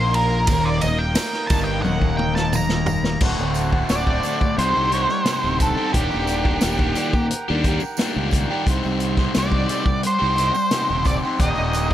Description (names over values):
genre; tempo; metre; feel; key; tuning
psychedelic rock; 88 BPM; 4/4; straight; unclear; A4 = 440 Hz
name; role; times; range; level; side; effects
octave-fuzz lead guitar; melody; 0.0-11.9 s; G4 to Bb5; -23 LUFS; equal; distortion, analog delay
pedal harmonium; sustained chords; 0.0-11.9 s; Bb3 to A5; -31 LUFS; right 3 dB; none
crunchy overdriven guitar; riff; 0.0-11.9 s; D2 to C5; -23 LUFS; left 1 dB; phaser
fingered electric bass; bass; 0.0-11.9 s; D1 to Eb2; -24 LUFS; equal; none
vintage drum kit; drums; 0.1-11.9 s; crash cymbal, hi-hat, kick drum, ride cymbal, snare drum, toms; -23 LUFS; equal; none
tambourine; percussion; 0.5-11.9 s; none; -38 LUFS; right 10 dB; none
room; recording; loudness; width
light reverb, small room ambience; none; -18 LUFS; side -12 dB against mid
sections
0.0-3.2 A section; 3.2-11.9 B section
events
lead electric guitar solo 0.0-3.2; drum fill 1.9-3.2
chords
0.0 Eb5; 3.2 D7; 4.6 Cmadd9; 5.9 Ebmaj7; 8.7 Cmadd9; 11.4 Ebmaj7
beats
| 0.50 1.18 1.86 2.54 | 3.22 3.90 4.58 5.26 | 5.95 6.63 7.31 7.99 | 8.67 9.35 10.03 10.71 | 11.39